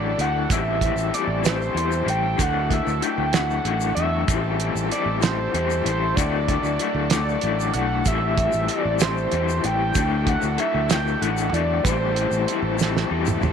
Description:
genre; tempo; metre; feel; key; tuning
psychedelic rock; 64 BPM (dotted quarters); 6/8; straight; A dorian; A4 = 439 Hz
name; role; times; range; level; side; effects
overdriven synth lead; melody; 0.0-12.7 s; C5 to G5; -26 LUFS; right 1 dB; distortion, chorus, slapback echo
overdriven combo organ; sustained chords; 0.0-13.5 s; F#3 to A4; -32 LUFS; right 14 dB; none
electric guitar through a small old amp; riff; 0.0-13.5 s; A2 to E4; -25 LUFS; left 14 dB; tremolo
fingered electric bass; bass; 0.0-13.5 s; A1 to E2; -26 LUFS; right 1 dB; none
cloth-damped thuddy drum kit; drums; 0.2-13.5 s; hi-hat, kick drum, snare drum, toms; -24 LUFS; right 4 dB; none
tube shaker; percussion; 0.5-13.5 s; none; -35 LUFS; left 15 dB; none
room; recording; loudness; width
light reverb, small room ambience; 1960s-style stereo with parts hard left and right; -20 LUFS; side -7 dB against mid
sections
0.0-13.5 A section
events
drum fill 12.8-13.5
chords
0.0 Dadd9; 0.5 Am7; 2.4 Dadd9; 4.3 Am7; 6.2 Dadd9; 8.1 Am7; 9.9 Dadd9; 11.8 Am7

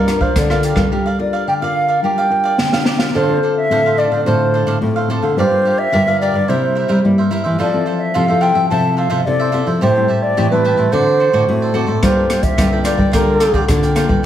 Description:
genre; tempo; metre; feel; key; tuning
samba and choro; 108 BPM; 4/4; straight; G minor, D minor from 3.1 s; A4 = 441 Hz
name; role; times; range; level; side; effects
baroque flute; melody; 0.0-13.7 s; Bb4 to A5; -17 LUFS; right 1 dB; none
cavaquinho; accompaniment; 0.0-14.3 s; D4 to A5; -23 LUFS; right 3 dB; none
nylon-string guitar; accompaniment; 0.0-14.2 s; G2 to Bb4; -20 LUFS; left 4 dB; none
nylon-string guitar; bass; 0.0-14.2 s; G2 to G3; -18 LUFS; equal; none
open jazz drum kit; drums; 0.1-3.1, 12.0-14.2 s; hi-hat, kick drum, rim click, snare drum; -18 LUFS; equal; none
room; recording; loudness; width
wet large studio reverb, RT60 1.1 s; heard from further back in the room; -13 LUFS; side -11 dB against mid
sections
0.0-3.1 A section; 3.1-14.3 B section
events
drum fill 2.6-3.1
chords
0.0 Gm7; 3.1 Dm7; 5.4 Gm7; 6.5 C7; 7.6 Fmaj7; 9.8 Am7; 10.9 D7; 12.0 Gm9

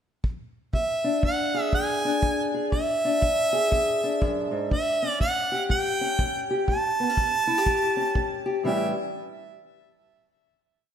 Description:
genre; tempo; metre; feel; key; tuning
acoustic country blues, solo or duo; 121 BPM; 4/4; swing 62% on 8ths; A mixolydian; A4 = 439 Hz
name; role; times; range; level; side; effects
kick drum; drums; 0.2-8.3 s; none; -28 LUFS; equal; none
warm harmonica; melody; 0.7-8.9 s; E5 to A5; -25 LUFS; right 2 dB; ping-pong delay
fingerpicked steel-string acoustic guitar; accompaniment; 0.7-8.9 s; E2 to G#4; -27 LUFS; left 2 dB; none
room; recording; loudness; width
wet lush hall reverb, RT60 1.6 s, small room ambience; dreamy mix soaked in reverb; -22 LUFS; side -8 dB against mid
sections
0.0-0.7 pickup bar; 0.7-8.6 head; 8.6-10.6 final chord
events
none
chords
0.0 N.C.; 0.7 E7; 4.7 A7

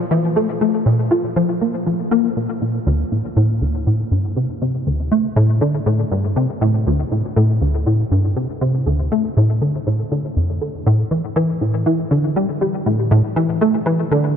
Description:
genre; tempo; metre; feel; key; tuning
ambient; 120 BPM; 4/4; straight; unclear; A4 = 441 Hz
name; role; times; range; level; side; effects
plucky analog bass; solo; 0.0-14.4 s; D2 to F4; -16 LUFS; equal; ensemble chorus, ping-pong delay
room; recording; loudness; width
moderate huge ambient reverb, RT60 8.7 s; none; -16 LUFS; side -8 dB against mid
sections
0.0-2.9 A section; 2.9-14.4 B section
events
none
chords
none

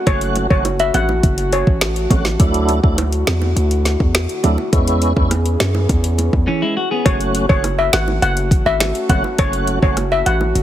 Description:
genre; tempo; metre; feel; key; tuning
dancehall; 103 BPM; 4/4; straight; F# minor; A4 = 440 Hz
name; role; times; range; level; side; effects
warm French horn section; sustained chords; 0.0-10.6 s; D3 to G#4; -24 LUFS; equal; sidechain pumping
steel pan; melody; 0.1-1.6, 7.1-10.4 s; C#5 to F#5; -19 LUFS; left 2 dB; ping-pong delay
tonewheel organ; accompaniment; 0.1-10.0 s; F#3 to F#4; -21 LUFS; right 1 dB; overdrive, chorus vibrato, slow rotary speaker
hard-hitting 808-style bass; bass; 0.1-10.6 s; F#1 to F#2; -19 LUFS; equal; none
afro-pop drum kit; drums; 0.1-10.6 s; finger snaps, hi-hat, kick drum, rim click, snare drum; -18 LUFS; equal; none
bongos; percussion; 0.4-10.5 s; none; -25 LUFS; right 5 dB; none
clean electric guitar; arpeggios; 6.5-7.2 s; E3 to G#4; -20 LUFS; left 1 dB; ping-pong delay
room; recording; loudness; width
digital ambience; heavily compressed radio sound, multiband compression; -14 LUFS; side -12 dB against mid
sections
0.0-7.1 A section; 7.1-10.6 B section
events
drums muted 6.5-7.1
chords
0.0 F#m; 2.4 Dadd9; 4.7 E6; 7.1 F#m

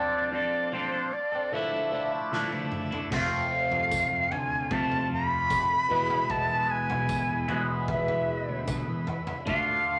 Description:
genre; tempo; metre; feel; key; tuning
psychedelic rock; 76 BPM; 4/4; straight; unclear; A4 = 440 Hz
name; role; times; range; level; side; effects
breathy jazz flute; melody; 0.0-10.0 s; C5 to B5; -30 LUFS; equal; none
combo organ; sustained chords; 0.0-10.0 s; A4 to E6; -44 LUFS; equal; none
twangy electric guitar; riff; 0.0-10.0 s; E2 to A4; -33 LUFS; equal; phaser
raw garage drum kit; drums; 2.3-9.7 s; crash cymbal, kick drum, snare drum, toms; -40 LUFS; equal; none
fuzz fingered electric bass; bass; 3.1-9.8 s; B1 to E3; -39 LUFS; equal; overdrive
tambourine; percussion; 3.9-8.9 s; none; -47 LUFS; equal; none
room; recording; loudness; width
wet studio ambience, RT60 0.5 s; none; -28 LUFS; mono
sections
0.0-3.1 A section; 3.1-10.0 B section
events
break 0.0-3.1; drum fill 2.3-3.1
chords
0.0 F6; 1.5 Dmadd9; 3.1 F; 5.9 E; 9.5 Dm

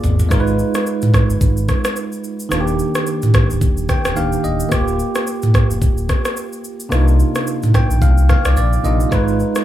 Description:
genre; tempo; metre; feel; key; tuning
afrobeats; 109 BPM; 4/4; swing 58% on 16ths; unclear; A4 = 440 Hz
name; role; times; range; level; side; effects
bell-like tine electric piano; accompaniment; 0.0-9.6 s; C3 to G5; -20 LUFS; right 2 dB; medium stereo tremolo
sub bass with octave; bass; 0.0-9.4 s; D1 to C2; -17 LUFS; equal; none
afro-pop drum kit; drums; 0.0-9.6 s; kick drum, rim click, shaker, toms; -17 LUFS; equal; none
room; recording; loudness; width
little or no reverb; none; -14 LUFS; side -12 dB against mid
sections
0.3-9.6 A section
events
drum fill 0.0-0.3; tine electric piano fill 3.6-4.7, 7.5-9.1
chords
0.3 Abm6; 2.5 Ebmaj7; 4.7 Gm7/D; 6.9 Cm11; 9.1 Abm6

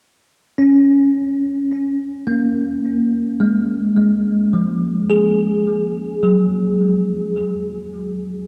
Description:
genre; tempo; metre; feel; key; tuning
ambient; 53 BPM; 4/4; straight; unclear; A4 = 440 Hz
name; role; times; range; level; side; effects
bell-like tine electric piano; solo; 0.6-8.5 s; F3 to Ab4; -18 LUFS; equal; ensemble chorus, tape echo
room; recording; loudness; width
wet lush hall reverb, RT60 3.1 s; dark, warm production; -17 LUFS; mono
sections
0.0-8.5 A section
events
none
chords
0.0 Fmadd11; 7.4 N.C.

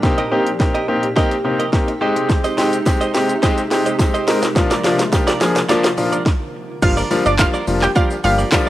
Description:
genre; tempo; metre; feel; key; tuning
dance-pop; 106 BPM; 4/4; straight; G phrygian; A4 = 441 Hz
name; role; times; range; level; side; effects
clear concert grand piano; accompaniment; 0.0-8.7 s; F3 to Bb4; -18 LUFS; left 2 dB; sidechain pumping
granular cloud pad; sustained chords; 0.0-8.7 s; C3 to Bb4; -27 LUFS; right 1 dB; built-in reverb, sidechain pumping
mallet-like synth pluck; arpeggios; 0.0-6.2 s; Bb2 to Ab4; -30 LUFS; right 3 dB; none
direct-recorded clean electric guitar; riff; 0.0-8.7 s; F4 to Eb5; -24 LUFS; right 4 dB; lush chorus
house drum kit; drums; 0.0-8.7 s; crash cymbal, handclaps, hi-hat, kick drum, shaker, snare drum; -18 LUFS; equal; overdrive
tambourine; percussion; 2.4-8.7 s; none; -39 LUFS; right 7 dB; none
analog pluck; melody; 6.8-8.4 s; D4 to G5; -19 LUFS; right 1 dB; chorus, sidechain pumping, cassette tape
round analog bass; bass; 6.8-8.4 s; F1 to G1; -21 LUFS; equal; sidechain pumping
room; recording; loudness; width
light reverb; home recording on cassette; -14 LUFS; side -14 dB against mid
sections
0.0-6.8 A section; 6.8-8.7 B section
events
build-up 0.0-6.8; drum fill 0.0-6.3; stop 6.3-6.8; drop 6.8-8.7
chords
0.0 Cm7; 2.0 Abmaj7; 4.6 Bb; 6.8 Gm7

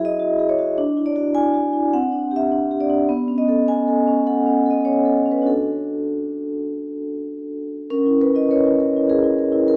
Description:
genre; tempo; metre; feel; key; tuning
classical, contemporary piece for solo vibraphone; 102 BPM; 4/4; rubato; unclear; A4 = 440 Hz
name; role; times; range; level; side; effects
vibraphone with soft mallets; solo; 0.0-9.8 s; B3 to G#5; -20 LUFS; equal; none
room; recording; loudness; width
moderate recital hall reverb, RT60 1.7 s; none; -20 LUFS; mono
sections
0.0-7.9 A section; 7.9-9.8 B section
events
none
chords
0.0 Eadd9; 0.8 Dadd9; 1.9 Csus2; 3.1 Bsus2; 5.5 D; 7.9 C#m6

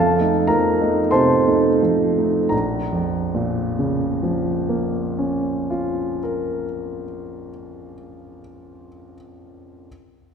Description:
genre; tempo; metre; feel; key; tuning
classical, romantic character piece for solo piano; 46 BPM; 4/4; rubato; Bb minor; A4 = 439 Hz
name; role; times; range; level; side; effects
warm concert grand piano; solo; 0.0-9.9 s; Bb1 to C6; -18 LUFS; right 1 dB; none
room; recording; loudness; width
wet concert hall reverb, RT60 1.8 s; recorded in a church or concert hall; -18 LUFS; side -7 dB against mid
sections
0.0-2.5 A section; 2.5-7.7 B section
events
slowing down 0.0-2.5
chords
0.0 F7; 2.5 Bbm

